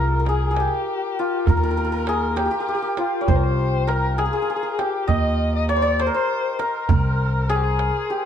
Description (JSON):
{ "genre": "Persian modal ensemble", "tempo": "66 BPM (dotted quarters)", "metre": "6/8", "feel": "straight", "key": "C dastgah shur", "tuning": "A4 = 440 Hz", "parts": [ { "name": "santur", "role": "melody", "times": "0.0-8.3 s", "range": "F4 to Eb5", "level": "-22 LUFS", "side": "left 1 dB", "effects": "none" }, { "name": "dark kamancheh", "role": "second line", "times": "0.0-8.3 s", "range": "F4 to Eb5", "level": "-28 LUFS", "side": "left 6 dB", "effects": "none" }, { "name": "upright bass", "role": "bass", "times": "0.0-7.9 s", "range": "C2 to Eb2", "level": "-22 LUFS", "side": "equal", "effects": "none" }, { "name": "tombak", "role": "percussion", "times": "0.3-7.9 s", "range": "none", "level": "-23 LUFS", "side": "right 4 dB", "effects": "none" } ], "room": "light reverb", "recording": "dark, warm production", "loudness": "-19 LUFS", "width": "side -9 dB against mid", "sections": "0.0-8.3 A section", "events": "none", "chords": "none", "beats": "0.57 | 1.48 2.38 | 3.28 4.19 | 5.09 6.00 | 6.90 7.80" }